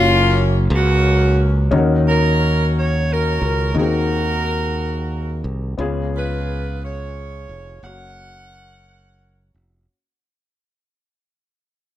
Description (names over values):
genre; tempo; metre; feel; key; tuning
gospel; 59 BPM (dotted quarters); 6/8; straight; F# major; A4 = 440 Hz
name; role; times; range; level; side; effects
clear saxophone section; melody; 0.0-9.5 s; A#3 to F#5; -20 LUFS; equal; none
warm baby grand piano; accompaniment; 0.0-9.9 s; C#3 to E#5; -23 LUFS; left 3 dB; none
modern bright fingered electric bass; bass; 0.0-9.9 s; E#1 to D#2; -19 LUFS; equal; none
room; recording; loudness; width
light reverb; none; -16 LUFS; side -12 dB against mid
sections
0.0-1.7 A section; 1.7-9.9 B section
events
fade-out 1.7-9.9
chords
0.0 F#maj7; 1.7 D#m7; 3.8 G#7/D#; 5.8 C#7; 7.8 F#maj7